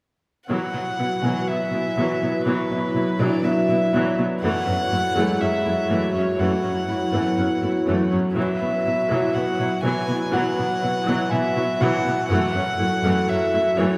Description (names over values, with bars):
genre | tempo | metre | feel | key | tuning
cinematic | 122 BPM | 4/4 | straight | unclear | A4 = 440 Hz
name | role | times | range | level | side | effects
dark violin | melody | 0.5-14.0 s | B4 to G#5 | -27 LUFS | equal | none
rich symphonic viola section | accompaniment | 0.5-14.0 s | E3 to E4 | -29 LUFS | equal | none
warbly tape-like pad | sustained chords | 0.8-14.0 s | F#3 to C#5 | -27 LUFS | equal | chorus, built-in reverb
warm symphonic cello section | bass | 0.5-13.9 s | F#2 to B2 | -29 LUFS | equal | none
felt-muted upright piano | texture | 1.2-14.0 s | G#3 to G#5 | -34 LUFS | equal | none
room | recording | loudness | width
wet church reverb, RT60 3.5 s | recorded in a church or concert hall | -22 LUFS | mono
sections
0.5-14.0 A section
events
none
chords
0.5 Bsus4; 4.4 F#m7; 8.4 Bsus4; 12.3 F#m7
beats
| 0.49 0.99 1.48 1.97 | 2.46 2.95 3.44 3.94 | 4.43 4.92 5.41 5.90 | 6.40 6.89 7.38 7.87 | 8.36 8.86 9.35 9.84 | 10.33 10.82 11.31 11.80 | 12.30 12.79 13.28 13.77